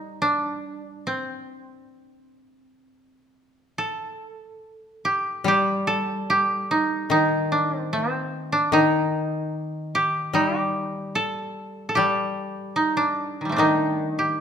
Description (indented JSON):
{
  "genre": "japanese traditional, Japanese chamber music",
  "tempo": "73 BPM",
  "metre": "4/4",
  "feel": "rubato",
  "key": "unclear",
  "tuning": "A4 = 440 Hz",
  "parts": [
    { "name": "koto", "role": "melody", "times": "0.0-14.4 s", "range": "Eb3 to A4", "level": "-23 LUFS", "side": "right 2 dB", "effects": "none" },
    { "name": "koto", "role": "accompaniment", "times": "0.0-14.4 s", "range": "Eb3 to G3", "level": "-26 LUFS", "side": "left 4 dB", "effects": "none" }
  ],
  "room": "moderate recital hall reverb, RT60 1.5 s",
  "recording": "minimal, uncompressed stereo recording",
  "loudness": "-21 LUFS",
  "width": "side -8 dB against mid",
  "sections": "0.0-3.8 A section; 3.8-14.4 B section",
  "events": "none",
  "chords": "none",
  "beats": "| 0.26 1.10 1.96 2.86 | 3.76 4.62 5.46 6.29 | 7.12 7.93 8.74 9.55 | 10.36 11.17 11.97 12.78 | 13.60"
}